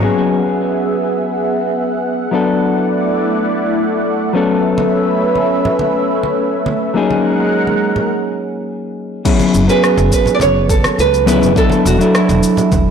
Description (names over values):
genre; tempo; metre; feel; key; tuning
sunset chillout; 104 BPM; 4/4; straight; F# minor; A4 = 440 Hz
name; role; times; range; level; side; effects
mellow electric guitar; accompaniment; 0.0-12.9 s; F#3 to A4; -16 LUFS; moving between left 6 dB and right 4 dB; auto-pan, digital delay
lush unison pad; sustained chords; 0.0-8.1 s; G#3 to F#5; -17 LUFS; equal; chorus, phaser
congas; percussion; 4.8-12.8 s; none; -24 LUFS; right 3 dB; none
deep house drum kit; drums; 9.3-12.8 s; cabasa, crash cymbal, rim click; -21 LUFS; left 1 dB; soft clipping on snare
electronic kick drum; drums; 9.3-12.8 s; none; -16 LUFS; equal; none
upright bass; bass; 9.5-12.9 s; E1 to C#2; -17 LUFS; equal; tube saturation
nylon-string guitar; melody; 9.7-12.9 s; E4 to D5; -15 LUFS; right 6 dB; digital delay
room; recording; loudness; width
moderate lush hall reverb, RT60 1.6 s; blown-out, overdriven recording, overdrive; -12 LUFS; side -7 dB against mid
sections
0.0-9.3 A section; 9.3-12.9 B section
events
filter sweep on analog synth pad 0.0-9.3; break 8.1-9.3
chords
0.0 F#9sus4; 2.3 E9sus4; 4.4 B9sus4; 7.0 G#9sus4; 9.3 F#9sus4; 11.6 E9sus4